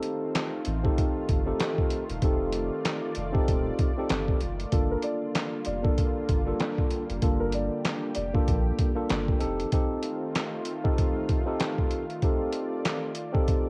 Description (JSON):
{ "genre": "hip hop, boom-bap hip-hop", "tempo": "96 BPM", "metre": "4/4", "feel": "swing 58% on 16ths", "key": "unclear", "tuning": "A4 = 441 Hz", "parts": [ { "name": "tine electric piano", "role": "accompaniment", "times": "0.0-13.7 s", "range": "Bb3 to A4", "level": "-33 LUFS", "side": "equal", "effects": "high-pass filter, low-pass filter, cassette tape" }, { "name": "lush unison pad", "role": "sustained chords", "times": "0.0-13.7 s", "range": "D3 to D5", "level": "-38 LUFS", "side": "equal", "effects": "chorus, high-pass filter, low-pass filter, cassette tape" }, { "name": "boom bap sampler-style drum kit", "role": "drums", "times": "0.0-13.6 s", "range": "handclaps, hi-hat, kick drum, snare drum", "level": "-30 LUFS", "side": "equal", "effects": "cassette tape" }, { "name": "warm sub bass", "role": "bass", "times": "0.7-9.7 s", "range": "Eb1 to Bb1", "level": "-34 LUFS", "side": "equal", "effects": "none" }, { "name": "dark upright piano", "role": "melody", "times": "4.9-8.6 s", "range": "Bb4 to D5", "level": "-36 LUFS", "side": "equal", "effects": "high-pass filter, low-pass filter, analog delay" } ], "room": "light reverb", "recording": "home recording on cassette", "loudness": "-28 LUFS", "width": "mono", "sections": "0.0-13.7 A section", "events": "none", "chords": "0.0 F7; 4.7 Gm7; 9.4 F7", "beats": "0.35 0.97 1.60 | 2.23 2.85 3.48 4.10 | 4.72 5.35 5.97 6.60 | 7.22 7.85 8.47 9.10 | 9.72 10.35 10.97 11.60 | 12.22 12.85 13.47" }